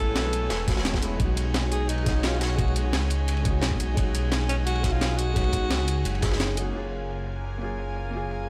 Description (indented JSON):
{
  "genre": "liquid drum and bass",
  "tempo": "173 BPM",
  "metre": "4/4",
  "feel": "straight",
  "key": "unclear",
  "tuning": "A4 = 439 Hz",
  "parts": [
    { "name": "breathy alto saxophone", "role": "melody", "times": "0.0-6.4 s", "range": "C#4 to A4", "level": "-34 LUFS", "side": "equal", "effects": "tape echo" },
    { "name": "warm grand piano", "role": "accompaniment", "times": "0.0-8.5 s", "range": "G#3 to G#4", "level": "-36 LUFS", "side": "equal", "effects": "delay" },
    { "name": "warm studio string section", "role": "sustained chords", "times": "0.0-8.5 s", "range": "A#4 to G#5", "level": "-40 LUFS", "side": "equal", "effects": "none" },
    { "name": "swelling detuned saw bass", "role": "bass", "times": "0.0-8.5 s", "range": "E1 to C#2", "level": "-30 LUFS", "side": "equal", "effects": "none" },
    { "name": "breakbeat sampler-style drum kit", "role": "drums", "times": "0.2-8.4 s", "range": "hi-hat, snare drum, tambourine", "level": "-33 LUFS", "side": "equal", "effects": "low-pass filter on hats, small room ambience, low-pass filter on cymbals, low-pass filter on snare, low-pass filter on perc" },
    { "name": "crunchy breakbeat drum kit", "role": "drums", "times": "0.2-6.7 s", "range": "ride cymbal, snare drum", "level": "-37 LUFS", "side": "equal", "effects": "high-pass filter on cymbals, small room ambience, high-pass filter on snare, high-pass filter on room" },
    { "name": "electronic kick drum", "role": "drums", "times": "0.7-6.3 s", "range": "none", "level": "-29 LUFS", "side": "equal", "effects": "small room ambience" }
  ],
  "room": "little or no reverb",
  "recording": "none",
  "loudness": "-26 LUFS",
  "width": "mono",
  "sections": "0.0-6.7 A section; 6.7-8.5 B section",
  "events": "kick drops out 6.4-6.7",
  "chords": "0.0 Amaj9; 1.2 B69; 6.7 F#maj9",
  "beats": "0.16 0.50 0.85 | 1.20 1.54 1.89 2.24 | 2.58 2.93 3.28 3.63 | 3.97 4.32 4.67 5.01 | 5.36 5.71 6.05 6.40 | 6.75 7.09 7.44 7.79 | 8.13 8.48"
}